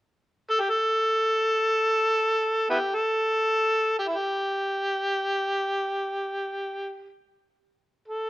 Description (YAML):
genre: chinese traditional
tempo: free time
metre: none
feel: none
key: unclear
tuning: A4 = 440 Hz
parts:
  - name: overdriven harmonica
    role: melody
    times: 0.5-8.3 s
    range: B3 to A4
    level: -23 LUFS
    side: equal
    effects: none
room: light reverb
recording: close, detailed microphones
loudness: -23 LUFS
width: side -17 dB against mid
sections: 0.0-8.3 A section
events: none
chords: none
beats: free time